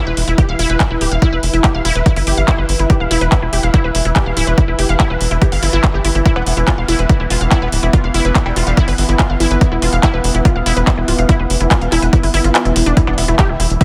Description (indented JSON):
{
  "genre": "psychedelic trance",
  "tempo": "143 BPM",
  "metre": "4/4",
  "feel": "straight",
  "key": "E phrygian",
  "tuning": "A4 = 440 Hz",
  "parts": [
    { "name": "bubbling stepped-filter texture", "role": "sustained chords", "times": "0.0-13.8 s", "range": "E3 to E4", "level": "-26 LUFS", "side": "equal", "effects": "chorus, built-in reverb, sidechain pumping" },
    { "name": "unison pluck", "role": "riff", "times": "0.0-13.8 s", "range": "D4 to F5", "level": "-22 LUFS", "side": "equal", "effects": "sidechain pumping, digital delay" },
    { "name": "warbly tape-like pad", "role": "texture", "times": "0.0-13.8 s", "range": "E4 to E5", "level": "-27 LUFS", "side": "equal", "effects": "chorus, built-in reverb, phaser, sidechain pumping" },
    { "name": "tight sequencer bass", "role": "bass", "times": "0.1-13.8 s", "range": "D1 to G1", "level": "-19 LUFS", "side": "equal", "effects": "none" },
    { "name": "techno drum kit", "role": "drums", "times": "0.2-13.8 s", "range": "handclaps, hi-hat", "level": "-22 LUFS", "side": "equal", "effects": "none" },
    { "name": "electronic kick drum", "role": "drums", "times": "0.4-13.8 s", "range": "none", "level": "-15 LUFS", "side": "equal", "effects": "none" },
    { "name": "metallic wobble bass", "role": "second line", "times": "6.4-8.8, 13.1-13.5 s", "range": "G3 to B3", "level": "-28 LUFS", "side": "equal", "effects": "distortion, chorus, vintage 12-bit sampler grit, sidechain pumping, high-pass filter, digital delay" },
    { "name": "impact", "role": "sound effects", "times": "13.1-13.8 s", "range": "none", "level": "-27 LUFS", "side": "equal", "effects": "none" }
  ],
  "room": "light reverb",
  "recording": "none",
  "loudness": "-14 LUFS",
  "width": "mono",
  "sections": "0.0-13.0 A section",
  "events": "kick drops out 12.5-13.0; impact 13.0-13.8",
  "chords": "0.0 E5"
}